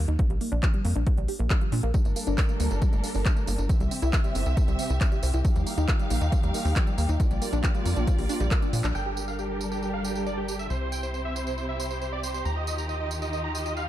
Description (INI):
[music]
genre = uplifting trance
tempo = 137 BPM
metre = 4/4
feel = straight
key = G minor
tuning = A4 = 440 Hz
[part]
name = analog pluck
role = arpeggios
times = 0.0-8.9 s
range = E3 to G4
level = -33 LUFS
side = right 1 dB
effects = chorus, phaser, sidechain pumping, tape echo
[part]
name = tight sequencer bass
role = bass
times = 0.0-13.9 s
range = G1 to Bb2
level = -28 LUFS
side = equal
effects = sidechain pumping
[part]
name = techno drum kit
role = drums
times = 0.1-13.9 s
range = handclaps, hi-hat, tambourine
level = -35 LUFS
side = equal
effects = none
[part]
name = electronic kick drum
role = drums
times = 0.2-8.6 s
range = none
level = -24 LUFS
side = equal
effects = none
[part]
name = dark studio string section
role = sustained chords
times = 1.9-13.9 s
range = C3 to F5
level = -33 LUFS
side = equal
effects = sidechain pumping
[part]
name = big supersaw lead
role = melody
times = 8.9-13.8 s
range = G4 to Bb5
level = -32 LUFS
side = right 2 dB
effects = phaser, sidechain pumping, low-pass filter, tape echo
[sound]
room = little or no reverb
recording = dark, warm production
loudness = -24 LUFS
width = side -13 dB against mid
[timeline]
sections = 0.0-8.9 A section; 8.9-13.9 B section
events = filter sweep on synth arpeggio sound 0.0-8.9; drum fill 8.5-8.9; band accent 8.8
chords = 0.2 Bb6; 1.9 Gmadd9; 3.7 C; 5.4 Ebadd9; 7.2 Bb6; 8.9 Gmadd9; 10.7 C; 12.5 Ebadd9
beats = | 0.19 0.63 1.07 1.50 | 1.94 2.38 2.82 3.26 | 3.69 4.13 4.57 5.01 | 5.45 5.88 6.32 6.76 | 7.20 7.64 8.07 8.51 | 8.95 9.39 9.83 10.26 | 10.70 11.14 11.58 12.02 | 12.45 12.89 13.33 13.77